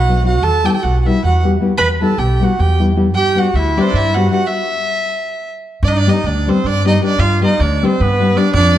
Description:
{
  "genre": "balkan folk, Balkan wedding band",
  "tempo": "311 BPM (eighths)",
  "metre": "7/8",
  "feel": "straight",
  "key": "E minor",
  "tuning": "A4 = 436 Hz",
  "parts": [
    { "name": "warm violin", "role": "melody", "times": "0.0-8.8 s", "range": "B4 to B5", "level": "-18 LUFS", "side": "right 2 dB", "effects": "none" },
    { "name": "warm clarinet", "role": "second line", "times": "0.0-8.8 s", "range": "B3 to B4", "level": "-21 LUFS", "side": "right 2 dB", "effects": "none" },
    { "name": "upright bass", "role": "bass", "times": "0.0-8.8 s", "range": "B1 to G2", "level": "-16 LUFS", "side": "right 1 dB", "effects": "none" },
    { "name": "nylon-string guitar", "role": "accompaniment", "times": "0.1-8.8 s", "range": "F#3 to G4", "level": "-18 LUFS", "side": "left 4 dB", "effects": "none" }
  ],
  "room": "moderate recital hall reverb, RT60 1.7 s",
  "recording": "dark, warm production",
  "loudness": "-12 LUFS",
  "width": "side -12 dB against mid",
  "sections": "0.0-5.8 A section; 5.8-8.8 B section",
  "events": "stop 4.5-5.8",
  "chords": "0.4 Em; 3.1 G; 4.5 N.C.; 5.8 G",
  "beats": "0.04 0.23 | 0.42 0.62 0.81 1.01 1.20 1.39 1.59 | 1.78 1.97 2.17 2.36 2.55 2.75 2.94 | 3.13 3.33 3.52 3.71 3.90 4.10 4.29 | 4.49 4.68 4.87 5.06 5.26 5.45 5.64 | 5.83 6.03 6.22 6.41 6.61 6.80 6.99 | 7.18 7.38 7.57 7.76 7.96 8.15 8.34 | 8.54 8.73"
}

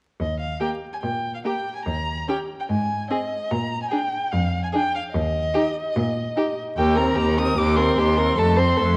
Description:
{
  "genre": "quick classical-period movement for string quartet",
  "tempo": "146 BPM",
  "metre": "4/4",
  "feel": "rubato",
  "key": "Eb major",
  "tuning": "A4 = 442 Hz",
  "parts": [
    { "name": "warm violin", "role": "melody", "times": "0.2-9.0 s", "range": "Eb5 to Eb6", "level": "-28 LUFS", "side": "equal", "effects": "none" },
    { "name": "clear cello", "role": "bass", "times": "0.2-9.0 s", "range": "Eb2 to Bb2", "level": "-27 LUFS", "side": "equal", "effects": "transformer saturation" },
    { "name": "rich violin", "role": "second line", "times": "0.6-9.0 s", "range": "G4 to C5", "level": "-28 LUFS", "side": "equal", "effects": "none" },
    { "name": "rich viola", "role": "accompaniment", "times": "0.6-9.0 s", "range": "A3 to Eb4", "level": "-28 LUFS", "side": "equal", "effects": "none" }
  ],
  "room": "moderate scoring stage reverb, RT60 1.9 s",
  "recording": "worn, warbling old tape, cassette tape, vinyl crackle, warbly pitch drift",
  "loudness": "-23 LUFS",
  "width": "mono",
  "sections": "0.2-9.0 A section",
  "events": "none",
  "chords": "0.2 Eb; 2.7 Ab5; 3.5 Bb; 5.1 Eb5; 6.8 Cm7/Eb; 8.4 F",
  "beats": "| 0.19 0.61 1.03 1.45 | 1.86 2.28 2.69 3.10 | 3.51 3.92 4.33 4.74 | 5.15 5.56 5.96 6.37 | 6.78 7.17 7.58 7.99 | 8.39 8.80"
}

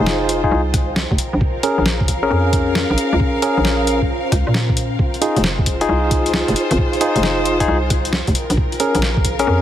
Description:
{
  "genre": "UK garage, two-step garage",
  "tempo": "134 BPM",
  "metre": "4/4",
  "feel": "swing 66% on 16ths",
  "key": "F minor",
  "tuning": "A4 = 441 Hz",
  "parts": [
    { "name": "ethereal airy pad", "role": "sustained chords", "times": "0.0-9.6 s", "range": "Db4 to G5", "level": "-28 LUFS", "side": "left 1 dB", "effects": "ensemble chorus, built-in reverb, phaser, sidechain pumping" },
    { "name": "barky tine electric piano", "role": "stabs", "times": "0.0-9.6 s", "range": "Db4 to Bb4", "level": "-19 LUFS", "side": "left 1 dB", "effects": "auto-pan, low-pass filter, tape echo" },
    { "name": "hollow knocking FM bass", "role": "bass", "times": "0.0-9.6 s", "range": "F1 to Bb2", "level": "-20 LUFS", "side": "equal", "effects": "none" },
    { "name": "rich studio string section", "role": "texture", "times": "0.0-9.6 s", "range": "F4 to F5", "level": "-25 LUFS", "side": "left 1 dB", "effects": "sidechain pumping" },
    { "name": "boom bap sampler-style drum kit", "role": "drums", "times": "0.1-9.5 s", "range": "hi-hat, rim click, snare drum", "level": "-22 LUFS", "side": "equal", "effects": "studio reverb" },
    { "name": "electronic kick drum", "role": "drums", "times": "0.4-9.4 s", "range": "none", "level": "-19 LUFS", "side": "equal", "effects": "studio reverb" }
  ],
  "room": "light reverb",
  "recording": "heavily compressed radio sound",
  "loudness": "-15 LUFS",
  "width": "side -11 dB against mid",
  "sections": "0.0-9.6 A section",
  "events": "filter sweep on tine electric piano 0.0-9.6",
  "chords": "0.0 Fm7; 1.2 Bbm7; 5.0 Fm7; 8.4 Bbm7",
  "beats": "0.07 0.52 0.96 | 1.41 1.86 2.31 2.75 | 3.20 3.65 4.10 4.54 | 4.99 5.44 5.89 6.34 | 6.78 7.23 7.68 8.13 | 8.57 9.02 9.47"
}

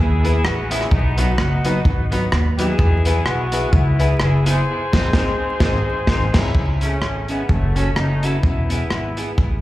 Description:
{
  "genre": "ska",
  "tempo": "128 BPM",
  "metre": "4/4",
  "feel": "swing 57% on 8ths",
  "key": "unclear",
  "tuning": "A4 = 439 Hz",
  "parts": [
    { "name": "warm horn section", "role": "melody", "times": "0.0-9.6 s", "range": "F#3 to B#4", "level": "-25 LUFS", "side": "left 2 dB", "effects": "dub echo, slapback echo" },
    { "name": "upright bass", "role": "bass", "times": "0.0-9.6 s", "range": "E1 to E2", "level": "-19 LUFS", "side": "equal", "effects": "none" },
    { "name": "semi-hollow electric guitar", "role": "accompaniment", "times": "0.2-9.3 s", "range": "F#3 to A4", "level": "-26 LUFS", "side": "right 1 dB", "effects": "wide subtle chorus, dub echo, slapback echo" },
    { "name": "bright upright piano", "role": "stabs", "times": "0.2-6.5 s", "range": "B3 to B#4", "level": "-28 LUFS", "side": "left 3 dB", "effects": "dub echo, slapback echo" },
    { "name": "crunchy breakbeat drum kit", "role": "drums", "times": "0.2-9.5 s", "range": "crash cymbal, hi-hat, kick drum, rim click, snare drum", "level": "-20 LUFS", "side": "equal", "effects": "none" }
  ],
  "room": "little or no reverb",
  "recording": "live gig heard through the venue's PA, club reverb, vinyl crackle",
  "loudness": "-16 LUFS",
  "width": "side -16 dB against mid",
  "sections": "0.0-6.5 A section; 6.5-9.6 B section",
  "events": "band accent 4.7-6.5",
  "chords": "0.0 E; 0.9 B; 2.8 E; 4.7 G#; 6.5 C#m; 7.5 F#m; 8.4 E",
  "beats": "0.45 | 0.92 1.38 1.85 2.32 | 2.79 3.26 3.73 4.20 | 4.67 5.14 5.61 6.08 | 6.55 7.02 7.49 7.96 | 8.44 8.91 9.38"
}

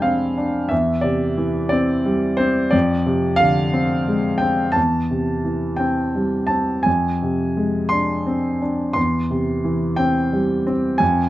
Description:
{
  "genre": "classical, lyrical solo piano",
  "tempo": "58 BPM (dotted quarters)",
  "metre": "6/8",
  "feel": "rubato",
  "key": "C major",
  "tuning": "A4 = 441 Hz",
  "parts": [
    { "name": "warm grand piano", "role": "solo", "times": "0.0-11.3 s", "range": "E2 to C6", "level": "-17 LUFS", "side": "equal", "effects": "none" }
  ],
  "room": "little or no reverb",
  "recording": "close, detailed microphones",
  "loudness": "-17 LUFS",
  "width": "side -15 dB against mid",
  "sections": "0.0-11.3 A section",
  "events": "none",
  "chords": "0.0 Fm6; 0.7 C/E; 2.7 Fm6; 4.8 C/E; 6.9 Fm6; 9.0 C/E",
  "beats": "| 0.72 1.73 | 2.74 3.74 | 4.77 5.81 | 6.87 7.92 | 8.96 10.00 | 11.01"
}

